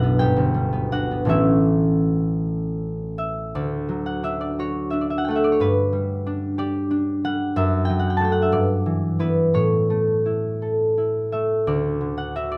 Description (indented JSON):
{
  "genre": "classical, solo harp piece",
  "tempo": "51-63 BPM (dotted quarters)",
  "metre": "6/8",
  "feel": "rubato",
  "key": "D major",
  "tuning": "A4 = 440 Hz",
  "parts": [
    { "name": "concert harp", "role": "solo", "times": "0.0-12.6 s", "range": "G1 to D6", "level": "-22 LUFS", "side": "equal", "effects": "none" }
  ],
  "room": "light reverb",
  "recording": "none",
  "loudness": "-22 LUFS",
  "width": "mono",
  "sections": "0.0-3.5 A section; 3.5-12.6 B section",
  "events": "none",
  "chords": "0.2 G; 1.3 A; 3.5 D; 5.6 G; 7.6 D/F#; 8.5 Em7/G; 9.5 A; 11.7 D",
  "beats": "0.18 | 1.29 2.42 | 3.54 4.58 | 5.60 6.59 | 7.56 8.53 | 9.54 10.60 | 11.65"
}